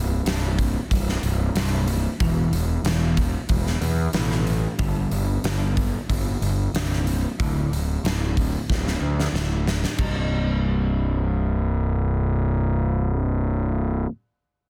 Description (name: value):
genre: quiet-loud alternative rock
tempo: 92 BPM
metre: 4/4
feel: straight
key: unclear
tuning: A4 = 435 Hz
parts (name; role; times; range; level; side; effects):
- semi-hollow electric guitar; arpeggios; 0.0-14.1 s; C2 to Eb4; -31 LUFS; equal; ensemble chorus
- fuzz picked electric bass; bass; 0.0-14.0 s; C1 to E2; -25 LUFS; equal; overdrive
- big rock drum kit; drums; 0.3-10.1 s; crash cymbal, hi-hat, kick drum, snare drum; -29 LUFS; equal; soft clipping on kick, soft clipping on snare
room: little or no reverb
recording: dense, heavily limited modern master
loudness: -23 LUFS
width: mono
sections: 0.0-10.0 A section; 10.0-12.6 B section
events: drum fill 8.7-10.0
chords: 0.0 C5; 2.2 E5; 4.8 G5; 7.4 D5; 10.0 Cm